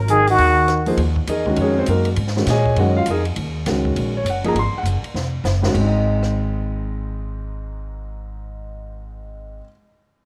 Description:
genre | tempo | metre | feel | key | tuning
modal jazz | 201 BPM | 4/4 | swing 63% on 8ths | Ab mixolydian | A4 = 439 Hz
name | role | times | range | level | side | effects
upright bass | bass | 0.0-9.6 s | F1 to Bb2 | -24 LUFS | equal | none
trumpet with plunger mute | melody | 0.1-0.8 s | Gb4 to Ab4 | -18 LUFS | equal | none
breathy trombone | second line | 0.1-0.8 s | Eb3 | -27 LUFS | equal | none
compact cocktail drum kit | drums | 0.1-6.3 s | crash cymbal, hi-hat, kick drum, ride cymbal, rim click, snare drum | -32 LUFS | equal | none
warm grand piano | accompaniment | 0.9-9.7 s | Ab2 to C6 | -24 LUFS | equal | none
room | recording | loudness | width
moderate echo chamber reverb, RT60 1.5 s | none | -19 LUFS | mono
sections
1.0-5.7 A section; 5.7-8.1 B section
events
drum fill 5.2-5.7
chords
0.0 Ab7(no3); 1.0 Ab9sus4; 5.7 Ab

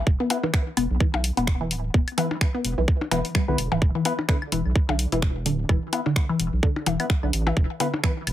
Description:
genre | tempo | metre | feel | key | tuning
minimal techno | 128 BPM | 4/4 | swing 57% on 16ths | unclear | A4 = 440 Hz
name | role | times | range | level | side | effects
round analog bass | bass | 0.0-8.3 s | D1 to B1 | -26 LUFS | right 1 dB | sidechain pumping
electronic kick drum | drums | 0.1-8.1 s | none | -21 LUFS | right 1 dB | none
resonant blip pluck | riff | 0.2-8.1 s | D3 to B3 | -27 LUFS | left 1 dB | phaser, cassette tape, sidechain pumping, tape echo
percussive organ stab | stabs | 0.3-7.9 s | B3 to B4 | -31 LUFS | left 3 dB | chorus, digital delay
garage drum kit | drums | 0.3-8.3 s | finger snaps, hi-hat | -29 LUFS | left 1 dB | none
percussion blips and claves | percussion | 0.3-8.3 s | none | -30 LUFS | left 5 dB | digital delay
room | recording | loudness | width
light reverb | heavily compressed radio sound | -21 LUFS | side -12 dB against mid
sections
0.0-8.3 A section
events
filter sweep on synth arpeggio sound 0.0-8.3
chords
0.0 E5

